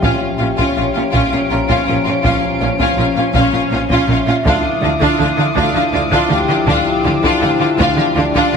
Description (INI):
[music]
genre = cinematic, suspense film score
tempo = 81 BPM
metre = 3/4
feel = straight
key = D harmonic minor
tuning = A4 = 440 Hz
[part]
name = warm symphonic violin section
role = melody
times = 0.0-8.6 s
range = F5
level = -22 LUFS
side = left 3 dB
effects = none
[part]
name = clear symphonic violin section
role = second line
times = 0.0-8.6 s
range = F4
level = -20 LUFS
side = left 1 dB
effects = none
[part]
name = clear symphonic viola section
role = accompaniment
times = 0.0-8.5 s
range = Db4 to D4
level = -19 LUFS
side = right 1 dB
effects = none
[part]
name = dark French horn section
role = sustained chords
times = 0.0-8.6 s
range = F3 to E4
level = -22 LUFS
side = left 5 dB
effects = none
[part]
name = clear symphonic cello section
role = bass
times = 0.0-8.6 s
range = Bb2 to D3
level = -21 LUFS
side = right 2 dB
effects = none
[part]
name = rich symphonic double bass section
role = bass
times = 0.0-8.6 s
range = Bb1 to D2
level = -22 LUFS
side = right 3 dB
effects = none
[part]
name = solo taiko drums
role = drums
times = 0.0-8.6 s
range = none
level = -24 LUFS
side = equal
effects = none
[part]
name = rich symphonic violin section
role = texture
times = 0.0-8.5 s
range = Db5 to D7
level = -26 LUFS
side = left 4 dB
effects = none
[part]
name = vibraphone with medium hard mallets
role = texture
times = 0.0-8.6 s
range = D4 to Bb5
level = -24 LUFS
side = left 1 dB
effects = none
[sound]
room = wet scoring stage reverb, RT60 1.5 s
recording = heavily compressed radio sound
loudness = -12 LUFS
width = side -6 dB against mid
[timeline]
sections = 0.0-8.6 A section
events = none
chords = 0.0 Bbm; 4.5 Dmadd9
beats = | 0.03 0.77 1.51 | 2.25 2.98 3.72 | 4.46 5.20 5.93 | 6.67 7.42 8.17